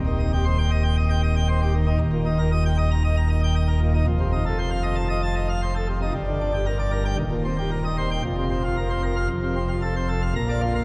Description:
classical, organ toccata; 116 BPM; 4/4; straight; A4 = 443 Hz
pipe organ, plenum; solo; 0.0-10.8 s; Eb1 to Bb5; -23 LUFS; equal
wet cathedral reverb, RT60 6.7 s; dark, warm production; -23 LUFS; mono
0.0-10.4 A section
0.0 Cm/Eb; 2.0 Eb; 4.1 F7; 6.1 Gm; 7.2 Cm7/Eb; 8.2 Fsus4; 9.3 F

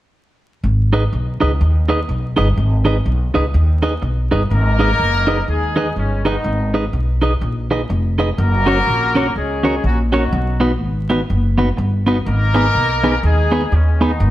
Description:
ska; 124 BPM; 4/4; swing 61% on 8ths; G# minor; A4 = 440 Hz
upright bass; bass; 0.6-14.3 s; E#1 to D#2; -16 LUFS; equal
clean electric guitar; accompaniment; 0.9-14.1 s; B3 to D#5; -20 LUFS; right 1 dB
clear horn section; melody; 4.5-14.3 s; C#3 to A#4; -19 LUFS; left 2 dB
moderate stone room reverb, RT60 1.5 s; band playing live in one room, vinyl crackle; -14 LUFS; side -14 dB against mid
0.6-4.5 A section; 4.5-14.3 B section
0.6 G#m; 8.4 F#; 10.3 B; 12.3 G#m

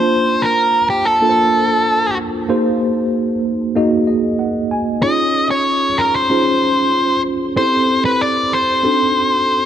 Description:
pop; 95 BPM; 4/4; straight; A4 = 439 Hz
octave-fuzz lead guitar; melody; 0.0-9.7 s; G4 to Eb5; -15 LUFS; equal; distortion
mellow tine electric piano; accompaniment; 0.0-9.7 s; Bb3 to A5; -17 LUFS; right 1 dB; medium stereo tremolo, lush chorus
moderate plate reverb, RT60 2.9 s; dark, warm production; -13 LUFS; side -9 dB against mid
0.0-9.7 A section
tine electric piano fill 3.8-5.0
0.0 Bbmaj7; 2.5 Ab7; 5.0 Dbmaj9; 7.6 Am7; 8.8 D7b9

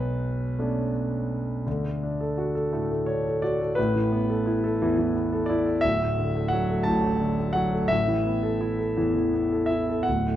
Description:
classical, lyrical solo piano; 57 BPM (dotted quarters); 6/8; rubato; D major; A4 = 440 Hz
warm concert grand piano; solo; 0.0-10.4 s; D1 to A5; -23 LUFS; equal
light reverb; dark, warm production; -23 LUFS; side -12 dB against mid
0.0-1.7 A section; 1.7-10.4 B section
0.0 Bm9; 1.7 D; 3.8 Asus2; 5.8 Dadd9; 7.9 Asus2

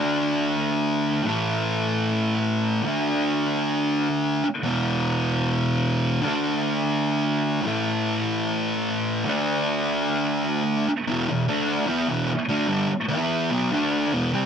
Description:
rock; 149 BPM; 4/4; straight; A4 = 440 Hz
thick fuzz guitar; solo; 0.0-14.5 s; E2 to E4; -21 LUFS; equal; distortion
moderate studio ambience, RT60 0.5 s; band playing live in one room, nothing above 10.8 kHz; -21 LUFS; side -7 dB against mid
0.0-11.1 A section; 11.1-14.5 B section
0.0 D5; 1.2 A5; 2.8 D5; 4.6 E5; 6.2 D5; 7.6 A5; 9.3 D5; 11.1 E5; 11.5 D5; 11.9 Em; 13.7 D5; 14.1 E5

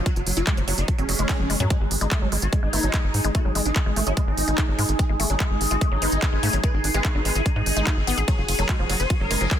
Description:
psychedelic trance; 146 BPM; 4/4; straight; A4 = 441 Hz
overtone-sweeping drone; sustained chords; 0.0-9.6 s; F#3 to G#4; -31 LUFS; left 4 dB; chorus, built-in reverb, sidechain pumping
deep dark ambient pad; texture; 0.0-9.6 s; C#4 to G#5; -35 LUFS; right 5 dB; chorus, built-in reverb, sidechain pumping
swarming rave lead; melody; 0.1-9.6 s; F#3 to C#5; -30 LUFS; equal; chorus, phaser, sidechain pumping, dub echo
woody wave-folded pluck; riff; 0.1-9.5 s; E#3 to G#4; -31 LUFS; moving between left 7 dB and right 6 dB; chorus, auto-pan, sidechain pumping, dub echo
electronic kick drum; drums; 0.1-9.6 s; -24 LUFS; equal
techno drum kit; drums; 0.1-9.6 s; handclaps, hi-hat, ride cymbal, snare drum, toms; -28 LUFS; right 1 dB
tight sequencer bass; bass; 0.2-9.5 s; F#1 to G#2; -25 LUFS; equal
swell; sound effects; 1.0-1.7 s; -35 LUFS; right 2 dB
metallic wobble bass; second line; 2.7-9.6 s; G#3 to B3; -40 LUFS; right 5 dB
digital ambience; dense, heavily limited modern master; -20 LUFS; side -10 dB against mid
0.0-9.6 A section
swell 1.0-1.7; drum fill 1.3-1.7
0.0 F#5; 1.7 G#5; 8.3 F#5

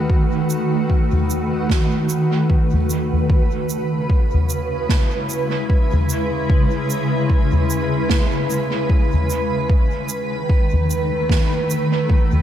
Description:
ambient dub; 75 BPM; 4/4; swing 59% on 16ths; C# minor; A4 = 439 Hz
granular cloud pad; sustained chords; 0.0-12.4 s; C#3 to B4; -20 LUFS; equal; built-in reverb
electronic kick drum; drums; 0.1-12.3 s; -17 LUFS; equal
soft-mallet drum kit; drums; 0.5-12.4 s; shaker, snare drum, toms; -22 LUFS; equal; dub echo
light reverb, small room ambience; echo-heavy mix; -16 LUFS; side -10 dB against mid
0.0-3.3 A section; 3.3-12.4 B section
0.0 B7; 3.3 C#m7; 9.7 B7

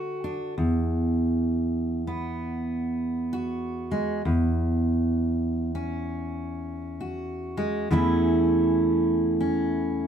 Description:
folk, solo fingerstyle acoustic guitar; 65 BPM; 4/4; swing 62% on 8ths; E mixolydian; A4 = 440 Hz
fingerpicked steel-string acoustic guitar; solo; 0.0-10.1 s; E2 to F#4; -24 LUFS; right 1 dB
wet studio reverb, RT60 0.7 s; heard from further back in the room; -24 LUFS; side -8 dB against mid
0.0-10.1 A section
0.0 D; 0.6 Esus2; 4.2 C#m/E; 7.9 A/E

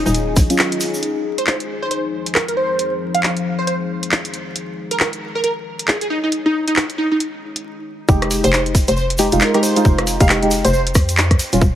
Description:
UK garage, two-step garage; 136 BPM; 4/4; swing 61% on 16ths; F minor; A4 = 441 Hz
hollow knocking FM bass; bass; 0.0-0.5, 8.1-11.8 s; Eb1 to F2; -19 LUFS; equal
deep dark ambient pad; texture; 0.0-11.4 s; F3 to Db5; -27 LUFS; left 4 dB; chorus, built-in reverb, sidechain pumping
plucky unison lead; melody; 0.1-10.8 s; Eb4 to F5; -21 LUFS; right 1 dB; wide subtle chorus, dub echo
garage drum kit; drums; 0.1-11.6 s; handclaps, hi-hat, rim click; -20 LUFS; equal
tube shaker; percussion; 0.1-1.0, 8.1-11.7 s; -28 LUFS; equal
electronic kick drum; drums; 0.4-0.5, 8.1-11.7 s; -14 LUFS; equal; overdrive
deep mellow chord stab; stabs; 0.5-1.0, 8.1-11.6 s; Gb3 to G4; -19 LUFS; right 1 dB; chorus, phaser, dub echo
light reverb; heavily compressed radio sound, multiband compression, vinyl crackle; -15 LUFS; side -11 dB against mid
0.0-1.0 A section; 1.0-8.1 B section; 8.1-11.8 C section
drop 8.1-11.8
0.0 Ebm9; 1.0 Fm7; 4.3 Eb7sus4; 8.1 Fm9

